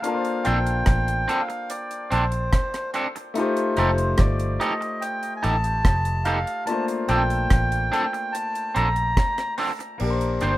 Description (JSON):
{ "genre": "lovers rock reggae", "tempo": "72 BPM", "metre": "4/4", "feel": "straight", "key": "Bb major", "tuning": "A4 = 445 Hz", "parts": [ { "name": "melodica", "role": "melody", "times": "0.0-10.6 s", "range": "C5 to Bb5", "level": "-27 LUFS", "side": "equal", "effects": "tape echo" }, { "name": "bright concert grand piano", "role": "accompaniment", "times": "0.0-10.6 s", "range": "A3 to C5", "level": "-28 LUFS", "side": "left 3 dB", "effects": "none" }, { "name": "deep reggae drum kit", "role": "drums", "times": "0.0-10.6 s", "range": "crash cymbal, hi-hat, kick drum, rim click", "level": "-23 LUFS", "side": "equal", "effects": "none" }, { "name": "electric guitar at the edge of break-up", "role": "stabs", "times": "0.5-10.5 s", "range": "C4 to C5", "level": "-25 LUFS", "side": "right 2 dB", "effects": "lush chorus" }, { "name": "vintage muted fingered electric bass", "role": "bass", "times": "0.5-10.6 s", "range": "F1 to Bb1", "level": "-24 LUFS", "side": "equal", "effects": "none" } ], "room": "moderate studio reverb, RT60 0.7 s", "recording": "rough home demo mix", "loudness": "-21 LUFS", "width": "side -16 dB against mid", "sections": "0.0-10.0 A section", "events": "none", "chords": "0.0 Bbmaj9; 3.4 F9; 6.7 Bbmaj9; 10.0 Bb69", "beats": "| 0.04 0.87 1.70 2.53 | 3.36 4.19 5.02 5.85 | 6.68 7.51 8.34 9.17 | 10.00" }